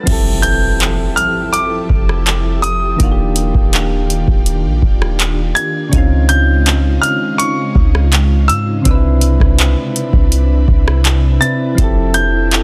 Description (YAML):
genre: contemporary R&B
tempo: 82 BPM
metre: 4/4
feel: straight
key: unclear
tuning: A4 = 441 Hz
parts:
  - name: warm concert grand piano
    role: melody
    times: 0.0-12.6 s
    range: Db6 to A6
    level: -20 LUFS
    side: equal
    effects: digital delay
  - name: soft electric-piano-like synth keys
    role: accompaniment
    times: 0.0-12.6 s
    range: C3 to B4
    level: -23 LUFS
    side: equal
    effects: chorus, tremolo
  - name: ethereal airy pad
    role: sustained chords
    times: 0.0-12.6 s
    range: C3 to B4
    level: -25 LUFS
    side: equal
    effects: ensemble chorus, built-in reverb
  - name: clean 808-style bass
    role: bass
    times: 0.1-12.6 s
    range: Eb1 to Ab2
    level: -16 LUFS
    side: equal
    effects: none
  - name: booming analog drum machine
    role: drums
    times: 0.1-12.6 s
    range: crash cymbal, handclaps, hi-hat, kick drum, rim click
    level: -17 LUFS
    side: equal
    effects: soft clipping on snare
  - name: impact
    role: sound effects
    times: 0.1-3.0 s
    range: none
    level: -26 LUFS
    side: equal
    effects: none
room: digital ambience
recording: dense, heavily limited modern master, low-pass filter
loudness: -14 LUFS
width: mono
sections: 0.1-12.6 A section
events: impact 0.1-3.0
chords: 0.1 Fmaj9; 3.0 Ebmaj9; 5.9 Dbmaj9; 8.9 Cmaj9; 11.8 Fmaj9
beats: | 0.07 0.81 1.54 2.27 | 3.00 3.73 4.46 5.20 | 5.93 6.66 7.39 8.12 | 8.86 9.59 10.32 11.05 | 11.78 12.51